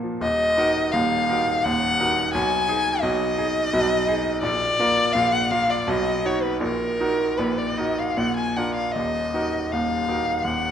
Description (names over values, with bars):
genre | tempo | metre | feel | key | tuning
classical, romantic duo for violin and grand piano | 76-88 BPM | 3/4 | rubato | Eb minor | A4 = 444 Hz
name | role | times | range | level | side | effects
bright grand piano | accompaniment | 0.0-10.7 s | Eb1 to Bb4 | -24 LUFS | right 1 dB | none
warm violin | melody | 0.2-10.7 s | Bb4 to Ab5 | -22 LUFS | left 2 dB | none
room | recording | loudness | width
moderate scoring stage reverb, RT60 1.8 s | dark, warm production | -20 LUFS | side -9 dB against mid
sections
0.2-10.7 A section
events
none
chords
0.2 Ebm; 2.3 Abm/Cb; 4.4 Bb; 5.9 B; 6.6 Ebm/Bb; 8.2 Bb; 8.9 Ebm